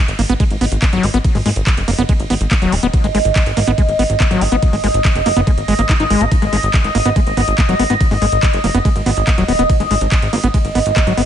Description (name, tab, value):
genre	psychedelic trance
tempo	142 BPM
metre	4/4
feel	straight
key	G# minor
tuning	A4 = 440 Hz
part	overtone-sweeping drone	sustained chords	0.6-11.3 s	D#5	-20 LUFS	right 2 dB	chorus, built-in reverb, phaser, sidechain pumping
part	plucky analog bass	bass	0.1-11.2 s	D#1 to G#1	-18 LUFS	equal	none
part	garage drum kit	drums	0.1-11.3 s	handclaps, hi-hat, ride cymbal	-23 LUFS	right 1 dB	overdrive, studio reverb
part	overdriven acid bass	riff	0.2-11.2 s	F#3 to D#4	-19 LUFS	moving between left 5 dB and right 5 dB	distortion, auto-pan, sidechain pumping, ping-pong delay
part	electronic kick drum	drums	0.4-11.0 s	none	-15 LUFS	equal	overdrive, studio reverb
room	little or no reverb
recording	nothing above 10.7 kHz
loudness	-12 LUFS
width	side -10 dB against mid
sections	0.0-11.3 A section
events	none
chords	0.0 G#5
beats	0.40 0.82 | 1.25 1.67 2.09 2.51 | 2.94 3.36 3.78 4.20 | 4.62 5.05 5.47 5.89 | 6.32 6.74 7.16 7.58 | 8.01 8.43 8.85 9.27 | 9.70 10.12 10.54 10.96